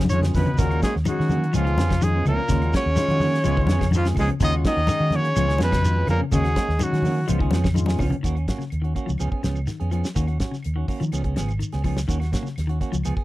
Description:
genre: afrobeat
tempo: 125 BPM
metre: 4/4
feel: straight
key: Eb minor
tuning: A4 = 439 Hz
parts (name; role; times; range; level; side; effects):
- clean electric guitar; arpeggios; 0.0-13.1 s; Db3 to F3; -29 LUFS; left 5 dB; spring reverb
- semi-hollow electric guitar; stabs; 0.0-13.2 s; F3 to Ab4; -31 LUFS; right 6 dB; none
- fingered electric bass; bass; 0.0-13.2 s; Ab1 to Eb3; -23 LUFS; equal; none
- damped 70s drum kit; drums; 0.0-13.2 s; hi-hat, kick drum, snare drum; -26 LUFS; equal; none
- congas; percussion; 0.0-8.2 s; none; -27 LUFS; left 2 dB; none
- clear trumpet; melody; 0.1-7.3 s; F4 to Eb5; -26 LUFS; equal; none
- breathy alto saxophone; second line; 0.1-7.3 s; F3 to Eb4; -32 LUFS; right 3 dB; none
- clear baritone saxophone; second line; 0.1-7.3 s; F2 to Eb3; -34 LUFS; left 2 dB; none
- barky tine electric piano; accompaniment; 0.1-8.1 s; Ab3 to Ab4; -32 LUFS; moving between left 9 dB and left 1 dB; overdrive, auto-pan
- shekere; percussion; 0.1-13.2 s; none; -30 LUFS; right 1 dB; none
- claves; percussion; 0.7-13.2 s; none; -45 LUFS; right 2 dB; none
room: little or no reverb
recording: dry, close 1970s-style studio recording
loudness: -20 LUFS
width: side -17 dB against mid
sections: 0.0-8.2 A section; 8.2-13.2 B section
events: drum fill 0.0-0.6, 7.8-8.2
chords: 0.0 Db7; 0.6 Ebm7; 1.5 Db7; 2.5 Ebm7; 3.5 Db7; 4.4 Ebm7; 5.4 Db7; 6.3 Ebm7; 7.3 Db7; 8.2 Ebm7; 9.2 Db7; 10.2 Ebm7; 11.1 Db7; 12.1 Ebm7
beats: 0.11 | 0.59 1.07 1.54 2.02 | 2.50 2.98 3.46 3.94 | 4.41 4.89 5.37 5.85 | 6.33 6.80 7.28 7.76 | 8.24 8.72 9.20 9.68 | 10.16 10.64 11.12 11.61 | 12.09 12.57 13.05

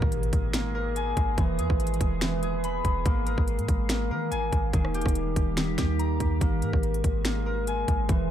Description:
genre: hip hop, trap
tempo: 143 BPM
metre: 4/4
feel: half-time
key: G# harmonic minor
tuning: A4 = 445 Hz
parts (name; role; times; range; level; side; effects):
- glassy FM pad; sustained chords; 0.0-8.3 s; D#3 to G#4; -35 LUFS; right 2 dB; ensemble chorus, built-in reverb
- concert harp; arpeggios; 0.0-8.3 s; D#3 to B5; -30 LUFS; left 1 dB; tape echo
- clean 808-style bass; bass; 0.0-8.3 s; D#1 to D#3; -29 LUFS; equal; none
- trap drum kit; drums; 0.0-8.2 s; finger snaps, hi-hat, kick drum, rim click, snare drum; -27 LUFS; equal; none
- impact; sound effects; 0.0-1.4 s; none; -38 LUFS; right 2 dB; none
room: digital ambience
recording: dark, warm production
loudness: -24 LUFS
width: side -10 dB against mid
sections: 0.0-8.3 A section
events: impact 0.0-1.4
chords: 0.0 G#sus2; 1.4 E; 3.1 G#sus2; 4.7 D#; 6.4 G#sus2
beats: 0.12 0.54 0.96 | 1.38 1.80 2.22 2.64 | 3.06 3.48 3.90 4.32 | 4.73 5.15 5.57 5.99 | 6.41 6.83 7.25 7.67 | 8.09

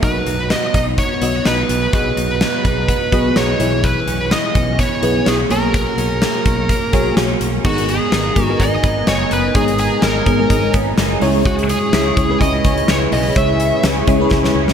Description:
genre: 1980s-style pop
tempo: 126 BPM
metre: 4/4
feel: swing 55% on 16ths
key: unclear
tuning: A4 = 436 Hz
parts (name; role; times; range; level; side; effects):
- high-gain lead guitar; melody; 0.0-13.8 s; F#4 to E5; -20 LUFS; equal; distortion
- FM electric piano with soft pad layer; accompaniment; 0.0-14.7 s; G#2 to D#5; -20 LUFS; left 1 dB; chorus, phaser
- twelve-string electric guitar; riff; 0.0-14.7 s; E3 to A#4; -25 LUFS; right 4 dB; ensemble chorus
- modern bright picked electric bass; bass; 0.0-14.7 s; F#1 to C#2; -22 LUFS; equal; none
- huge arena drum kit; drums; 0.0-14.7 s; crash cymbal, hi-hat, kick drum, snare drum; -18 LUFS; equal; none
- warm analog pad; sustained chords; 7.6-14.7 s; E4 to C#6; -24 LUFS; equal; chorus
room: moderate lush hall reverb, RT60 1.9 s, small room ambience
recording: bright 1980s-style digital production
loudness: -13 LUFS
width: side -8 dB against mid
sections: 0.0-7.6 A section; 7.6-14.7 B section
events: drum fill 14.3-14.7; FM electric piano fill 14.6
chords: 0.0 B; 1.9 G#m7/B; 3.6 C#m7/B; 5.5 F#add9/B; 7.6 G#madd9; 11.2 C#m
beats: | 0.03 0.50 0.98 1.46 | 1.93 2.41 2.88 3.36 | 3.84 4.31 4.79 5.27 | 5.74 6.22 6.69 7.17 | 7.65 8.12 8.60 9.07 | 9.55 10.03 10.50 10.98 | 11.46 11.93 12.41 12.88 | 13.36 13.84 14.31

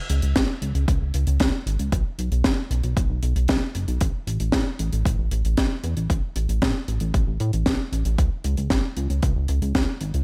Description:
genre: synthwave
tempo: 115 BPM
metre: 4/4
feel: straight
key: unclear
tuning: A4 = 440 Hz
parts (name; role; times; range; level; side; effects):
- chorused synth bass; bass; 0.1-10.2 s; F#1 to A2; -25 LUFS; equal; tube saturation, sidechain pumping
- deep reggae drum kit; drums; 0.1-10.2 s; hi-hat, snare drum; -28 LUFS; equal; studio reverb, gated reverb
- electronic kick drum; drums; 0.4-9.9 s; none; -26 LUFS; equal; overdrive, studio reverb
room: little or no reverb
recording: none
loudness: -23 LUFS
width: mono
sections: 0.0-10.2 A section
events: none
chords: none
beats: 0.36 0.88 1.40 | 1.92 2.45 2.97 3.49 | 4.01 4.53 5.05 5.58 | 6.10 6.62 7.14 7.66 | 8.19 8.71 9.23 9.75

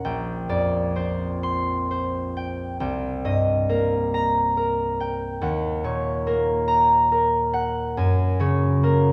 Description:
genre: classical, solo harp piece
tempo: 42-48 BPM (dotted quarters)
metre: 6/8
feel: rubato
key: unclear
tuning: A4 = 440 Hz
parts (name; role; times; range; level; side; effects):
- concert harp; solo; 0.0-9.1 s; Bb1 to C6; -23 LUFS; equal; none
room: moderate recital hall reverb, RT60 1.6 s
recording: none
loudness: -23 LUFS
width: mono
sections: 0.0-9.1 A section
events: none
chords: 0.1 Bb69; 2.8 Cm7; 5.4 Ebm7; 8.0 Gbadd9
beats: | 0.06 1.45 | 2.82 4.14 | 5.42 6.69 | 7.98

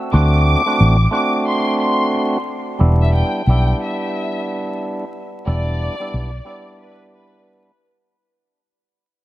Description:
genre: hip hop, boom-bap hip-hop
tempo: 90 BPM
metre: 4/4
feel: swing 62% on 16ths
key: E minor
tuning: A4 = 439 Hz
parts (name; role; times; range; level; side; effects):
- warm studio violin section; melody; 0.1-7.7 s; B4 to D6; -23 LUFS; left 1 dB; high-pass filter, low-pass filter, analog delay
- percussive tonewheel organ; accompaniment; 0.1-7.7 s; G3 to F#4; -21 LUFS; right 1 dB; overdrive, cassette tape, high-pass filter, low-pass filter, analog delay
- fingered electric bass; bass; 0.1-6.4 s; E1 to D2; -14 LUFS; equal; none
room: light reverb, studio reverb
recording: echo-heavy mix, vinyl crackle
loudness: -15 LUFS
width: side -15 dB against mid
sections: 0.0-2.8 A section; 2.8-8.1 B section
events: fade-out 2.8-8.1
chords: 0.0 D7; 2.8 Em7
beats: | 0.14 0.81 1.47 2.14 | 2.81 3.47 4.14 4.80 | 5.47 6.14 6.80 7.47

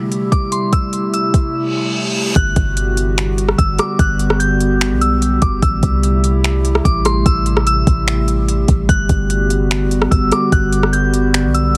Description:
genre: hip hop, atmospheric cloud-rap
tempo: 147 BPM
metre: 4/4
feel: half-time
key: unclear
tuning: A4 = 441 Hz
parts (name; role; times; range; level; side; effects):
- soft synth bell; melody; 0.0-11.8 s; C6 to G6; -24 LUFS; equal; chorus, phaser, delay
- warbly tape-like pad; sustained chords; 0.0-11.8 s; C3 to G4; -21 LUFS; equal; chorus, built-in reverb, sidechain pumping
- smooth R&B drum kit; drums; 0.1-11.6 s; finger snaps, hi-hat, kick drum, rim click; -19 LUFS; equal; overdrive
- reverse cymbal; sound effects; 1.7-2.4 s; none; -24 LUFS; equal; none
- warm 808-style bass; bass; 2.4-11.8 s; G1 to C2; -20 LUFS; equal; none
room: little or no reverb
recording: heavily compressed radio sound, multiband compression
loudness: -15 LUFS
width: mono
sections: 0.0-2.4 A section; 2.4-11.8 B section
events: drums muted 1.5-2.4; reverse cymbal 1.7-2.4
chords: 0.0 Am7; 2.4 Gmaj7; 5.6 Am7; 8.9 Gmaj7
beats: 0.32 | 0.73 1.14 1.54 1.95 | 2.36 2.77 3.18 3.58 | 3.99 4.40 4.81 5.22 | 5.62 6.03 6.44 6.85 | 7.26 7.67 8.07 8.48 | 8.89 9.30 9.71 10.11 | 10.52 10.93 11.34 11.75

